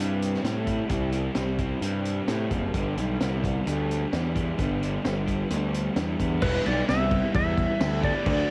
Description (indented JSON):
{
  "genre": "garage rock duo or trio",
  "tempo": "130 BPM",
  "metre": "4/4",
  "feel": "straight",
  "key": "E minor",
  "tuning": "A4 = 440 Hz",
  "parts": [
    { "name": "crunchy overdriven guitar", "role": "riff", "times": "0.0-8.5 s", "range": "G2 to E4", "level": "-32 LUFS", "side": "equal", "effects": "cassette tape" },
    { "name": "fuzz picked electric bass", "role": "bass", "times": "0.0-8.4 s", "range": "E1 to A2", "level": "-30 LUFS", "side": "equal", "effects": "overdrive" },
    { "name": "vintage drum kit", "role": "drums", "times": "0.2-8.4 s", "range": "crash cymbal, hi-hat, kick drum, snare drum", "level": "-33 LUFS", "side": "equal", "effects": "none" },
    { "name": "clean lap steel guitar", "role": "melody", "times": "6.4-8.5 s", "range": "B4 to E5", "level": "-30 LUFS", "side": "equal", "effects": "cassette tape" }
  ],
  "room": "little or no reverb",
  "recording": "home recording on cassette",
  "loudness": "-26 LUFS",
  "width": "mono",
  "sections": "0.0-6.4 A section; 6.4-8.5 B section",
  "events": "none",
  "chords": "0.0 C; 2.7 G; 6.4 Em"
}